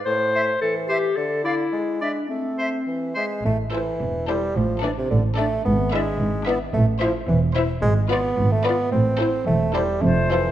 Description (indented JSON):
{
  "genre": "cinematic, playful, whimsical film cue",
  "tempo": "109 BPM",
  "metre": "2/4",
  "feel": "straight",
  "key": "A minor",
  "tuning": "A4 = 440 Hz",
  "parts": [
    { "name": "mellow clarinet", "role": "second line", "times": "0.1-10.5 s", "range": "C4 to C5", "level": "-26 LUFS", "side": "left 2 dB", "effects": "none" },
    { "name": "warm bassoon", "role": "accompaniment", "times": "0.1-10.5 s", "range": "A2 to C4", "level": "-25 LUFS", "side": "right 1 dB", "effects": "none" },
    { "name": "bright oboe", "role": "second line", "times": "0.3-3.3 s", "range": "C5 to D5", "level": "-30 LUFS", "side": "left 1 dB", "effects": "none" },
    { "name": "silver concert flute", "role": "second line", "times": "0.4-10.5 s", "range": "C5 to F5", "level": "-32 LUFS", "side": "left 2 dB", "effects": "none" },
    { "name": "rich studio cello section", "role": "bass", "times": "3.5-10.5 s", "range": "E2 to A2", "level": "-25 LUFS", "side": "right 1 dB", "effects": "none" },
    { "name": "rich studio double bass section", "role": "bass", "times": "3.5-10.5 s", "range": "E1 to A1", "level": "-24 LUFS", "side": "right 2 dB", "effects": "none" },
    { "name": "rich studio violin section", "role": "melody", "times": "3.7-10.5 s", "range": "C5 to E5", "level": "-32 LUFS", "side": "left 4 dB", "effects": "none" },
    { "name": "rich studio violin section", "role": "second line", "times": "3.7-10.5 s", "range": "A4 to C5", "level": "-32 LUFS", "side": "left 5 dB", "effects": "none" },
    { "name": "rich studio viola section", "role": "accompaniment", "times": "3.7-10.5 s", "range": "D4 to E#4", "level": "-32 LUFS", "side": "left 1 dB", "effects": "none" }
  ],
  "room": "moderate scoring stage reverb, RT60 1.9 s",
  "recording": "nothing above 10.6 kHz",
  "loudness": "-19 LUFS",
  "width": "side -12 dB against mid",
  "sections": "0.0-3.4 A section; 3.4-10.5 A section",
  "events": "none",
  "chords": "0.1 Am; 1.2 D5; 1.7 E7/G#; 2.3 Am; 4.6 D5/A; 5.7 E7/G#; 6.8 Am; 7.8 G#dim7; 8.9 Am",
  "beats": "| 0.07 0.61 | 1.17 1.73 | 2.30 2.87 | 3.45 4.00 | 4.56 5.11 | 5.66 6.21 | 6.75 7.29 | 7.83 8.38 | 8.93 9.48 | 10.03"
}